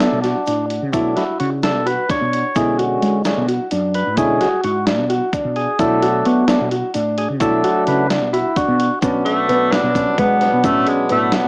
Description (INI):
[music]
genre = progressive instrumental, band music in an uneven meter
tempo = 260 BPM (eighths)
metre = 7/8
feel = straight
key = B dorian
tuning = A4 = 440 Hz
[part]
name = percussive tonewheel organ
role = accompaniment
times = 0.0-11.5 s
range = B2 to C#5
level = -22 LUFS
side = equal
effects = overdrive, cassette tape
[part]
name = clear baby grand piano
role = arpeggios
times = 0.0-11.4 s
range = B3 to F#4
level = -23 LUFS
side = equal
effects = cassette tape, analog delay
[part]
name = mellow fretless electric bass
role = bass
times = 0.0-11.5 s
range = F#2 to B3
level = -24 LUFS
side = equal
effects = lush chorus
[part]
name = dusty soul sampler-style drum kit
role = drums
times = 0.0-11.4 s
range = hi-hat, kick drum, snare drum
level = -27 LUFS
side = equal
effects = cassette tape
[part]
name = egg shaker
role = percussion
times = 0.0-10.9 s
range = none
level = -43 LUFS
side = equal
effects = none
[part]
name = clear tenor saxophone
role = melody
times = 9.2-11.5 s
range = G#3 to D4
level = -20 LUFS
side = equal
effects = cassette tape, analog delay
[sound]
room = moderate studio ambience, RT60 0.5 s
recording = home recording on cassette, small speaker sound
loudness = -17 LUFS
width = mono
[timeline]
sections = 0.0-9.0 A section; 9.0-11.5 B section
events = tonewheel organ solo 0.0-9.0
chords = 0.0 D; 2.6 Bm69; 5.8 D; 9.0 Bm7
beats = 0.00 0.24 0.47 0.70 | 0.93 1.17 1.40 1.63 1.86 2.09 2.33 | 2.56 2.79 3.02 3.25 3.48 3.71 3.95 | 4.18 4.41 4.64 4.87 5.10 5.33 5.57 | 5.80 6.03 6.26 6.49 6.72 6.95 7.18 | 7.41 7.64 7.87 8.10 8.33 8.56 8.79 | 9.03 9.26 9.49 9.72 9.95 10.18 10.41 | 10.64 10.87 11.10 11.33